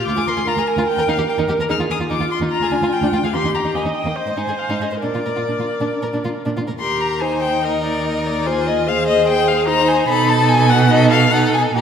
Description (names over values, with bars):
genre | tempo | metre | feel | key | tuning
quick classical-period movement for string quartet | 132-150 BPM | 4/4 | rubato | Eb major | A4 = 440 Hz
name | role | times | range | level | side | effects
dark violin | melody | 0.0-11.8 s | C5 to F6 | -20 LUFS | left 5 dB | none
rich violin | second line | 0.0-11.8 s | Bb3 to C5 | -23 LUFS | left 2 dB | none
rich viola | accompaniment | 0.0-11.8 s | Eb4 to Eb5 | -22 LUFS | right 3 dB | none
warm cello | bass | 0.0-11.8 s | D2 to B2 | -22 LUFS | right 4 dB | none
room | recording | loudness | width
wet scoring stage reverb, RT60 1.6 s | none | -15 LUFS | side -8 dB against mid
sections
0.0-6.8 A section; 6.8-11.8 B section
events
none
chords
0.1 Bb7/D; 0.9 Eb; 1.7 Fm7/Eb; 2.5 Ddim; 3.3 Eb; 4.2 Ab; 5.0 Bb; 6.8 Eb; 8.5 Fm7/Eb; 10.1 B7